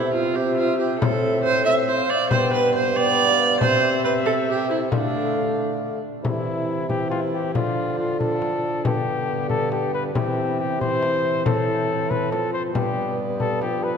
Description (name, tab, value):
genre	classical, renaissance-style consort dance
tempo	92 BPM (dotted quarters)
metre	6/8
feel	straight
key	unclear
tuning	A4 = 439 Hz
part	mellow cornet	melody	0.0-14.0 s	E4 to G5	-27 LUFS	left 3 dB	none
part	warm viola	second line	0.0-14.0 s	B3 to E5	-24 LUFS	right 4 dB	none
part	warm trombone	accompaniment	0.0-14.0 s	D3 to C4	-27 LUFS	left 1 dB	none
part	mellow bassoon	bass	0.0-14.0 s	G2 to D3	-27 LUFS	right 1 dB	none
part	frame drum	percussion	1.0-13.8 s	none	-28 LUFS	left 3 dB	none
room	wet church reverb, RT60 3.5 s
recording	none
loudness	-19 LUFS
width	side -6 dB against mid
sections	0.0-6.2 A section; 6.2-14.0 B section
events	none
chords	0.0 C; 1.0 Am; 2.3 G; 3.6 C; 4.9 Dm; 6.2 C; 7.6 Dm; 8.9 G; 10.1 C; 11.5 Am; 12.8 G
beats	0.36 | 1.01 1.66 | 2.31 2.96 | 3.61 4.26 | 4.93 5.59 | 6.25 6.90 | 7.55 8.20 | 8.85 9.50 | 10.15 10.80 | 11.46 12.10 | 12.75 13.40